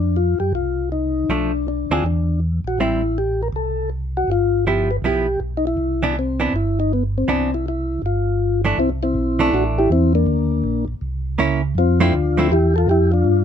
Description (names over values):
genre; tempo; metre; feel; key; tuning
soul jazz organ trio; 160 BPM; 4/4; swing 63% on 8ths; C major; A4 = 441 Hz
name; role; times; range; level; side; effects
percussive tonewheel organ; melody; 0.0-13.4 s; Bb3 to B4; -20 LUFS; left 3 dB; slow rotary speaker
mellow tonewheel organ; bass; 0.0-13.4 s; G1 to G2; -21 LUFS; right 1 dB; chorus vibrato, slow rotary speaker
hollow-body jazz guitar; accompaniment; 1.3-12.5 s; E3 to Ab4; -20 LUFS; right 4 dB; none
room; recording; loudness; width
light reverb; minimal, uncompressed stereo recording; -17 LUFS; side -8 dB against mid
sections
0.0-8.8 A section; 8.8-13.4 B section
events
none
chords
0.0 F5; 1.3 Bm7b5; 2.0 F#7b13 (rootless); 2.8 Am7; 4.3 G6; 5.8 Cmaj9; 8.0 G5; 8.8 C69; 10.3 Bb; 11.0 C7b9; 11.8 Fmaj7